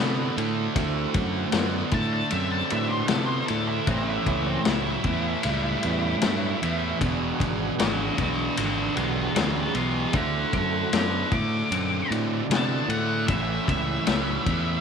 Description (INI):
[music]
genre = blues rock power trio and southern rock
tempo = 77 BPM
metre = 4/4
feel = straight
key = unclear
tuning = A4 = 443 Hz
[part]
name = overdriven tonewheel organ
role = sustained chords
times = 0.0-14.3 s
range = B3 to B5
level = -35 LUFS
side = right 8 dB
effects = chorus vibrato, slow rotary speaker
[part]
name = thick fuzz guitar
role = riff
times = 0.0-14.8 s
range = E2 to C4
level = -27 LUFS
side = right 1 dB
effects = distortion
[part]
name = growling fingered electric bass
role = bass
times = 0.0-14.8 s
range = E1 to C3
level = -29 LUFS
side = right 1 dB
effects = overdrive
[part]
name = vintage drum kit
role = drums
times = 0.4-14.6 s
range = kick drum, ride cymbal, snare drum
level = -28 LUFS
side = left 4 dB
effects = none
[part]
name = octave-fuzz lead guitar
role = melody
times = 1.9-14.8 s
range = C4 to D6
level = -29 LUFS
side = equal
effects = distortion
[sound]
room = moderate echo chamber reverb, RT60 2.0 s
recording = 1960s-style stereo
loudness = -22 LUFS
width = side -6 dB against mid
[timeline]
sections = 0.0-14.8 A section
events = tonewheel organ fill 5.4-7.0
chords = 0.0 D7; 3.9 A7; 7.0 E7; 10.1 D7; 13.3 A7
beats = | 0.76 1.54 2.32 3.10 | 3.88 4.67 5.45 6.23 | 7.01 7.80 8.58 9.36 | 10.15 10.93 11.72 12.50 | 13.29 14.08